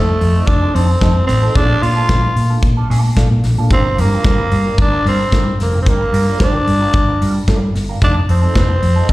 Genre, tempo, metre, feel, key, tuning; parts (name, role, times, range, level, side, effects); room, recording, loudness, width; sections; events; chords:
disco; 111 BPM; 4/4; straight; G minor; A4 = 440 Hz
growling tenor saxophone; melody; 0.0-9.1 s; A3 to F4; -18 LUFS; equal; plate reverb, slapback echo
mellow electric guitar; accompaniment; 0.0-9.1 s; F3 to C5; -25 LUFS; right 4 dB; wah, phaser, plate reverb, slapback echo
hollow-body short-scale fingered electric bass; bass; 0.0-9.1 s; F1 to Bb2; -15 LUFS; equal
modern studio drum kit; drums; 0.2-9.1 s; hi-hat, kick drum, snare drum; -18 LUFS; equal
light reverb; live gig heard through the venue's PA, recital hall reverb; -12 LUFS; side -18 dB against mid
0.0-9.1 A section
0.0 F7; 1.6 Bbmaj7; 3.7 Gm7; 8.0 F7